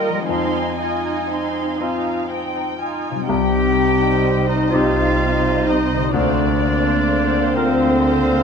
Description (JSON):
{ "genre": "cinematic", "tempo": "39-43 BPM (dotted quarters)", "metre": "6/8", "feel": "rubato", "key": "C minor", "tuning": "A4 = 436 Hz", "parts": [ { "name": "muted studio violin section", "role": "melody", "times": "0.0-8.4 s", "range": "Eb5 to Ab5", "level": "-30 LUFS", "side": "right 1 dB", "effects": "none" }, { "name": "muted studio violin section", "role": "second line", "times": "0.0-8.4 s", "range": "C5 to C6", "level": "-26 LUFS", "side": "left 4 dB", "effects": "none" }, { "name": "clear concert grand piano", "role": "accompaniment", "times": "0.0-8.4 s", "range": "C2 to Bb4", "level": "-24 LUFS", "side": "left 2 dB", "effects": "none" }, { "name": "muted studio viola section", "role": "accompaniment", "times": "0.0-8.4 s", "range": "G3 to C5", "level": "-25 LUFS", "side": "right 4 dB", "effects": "none" }, { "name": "concert harp", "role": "arpeggios", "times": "0.0-8.4 s", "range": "C3 to F4", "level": "-26 LUFS", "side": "left 10 dB", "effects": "none" }, { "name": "muted studio cello section", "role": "bass", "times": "0.0-8.4 s", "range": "C3 to Bb4", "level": "-26 LUFS", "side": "right 3 dB", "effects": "none" }, { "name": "clear clarinet", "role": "second line", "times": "3.3-8.4 s", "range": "C4 to G4", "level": "-21 LUFS", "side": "equal", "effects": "none" }, { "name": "mellow French horn section", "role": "sustained chords", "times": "3.3-8.4 s", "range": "Bb3 to Eb4", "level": "-23 LUFS", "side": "left 1 dB", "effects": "none" }, { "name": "muted studio double bass section", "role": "bass", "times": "3.3-8.4 s", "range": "C2 to D2", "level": "-24 LUFS", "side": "right 4 dB", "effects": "none" } ], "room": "moderate scoring stage reverb, RT60 1.5 s", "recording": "none", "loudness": "-16 LUFS", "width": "side -6 dB against mid", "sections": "0.0-3.3 A section; 3.3-8.4 B section", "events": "none", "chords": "0.3 Fm7; 3.3 Cm; 6.1 Bbadd9/D" }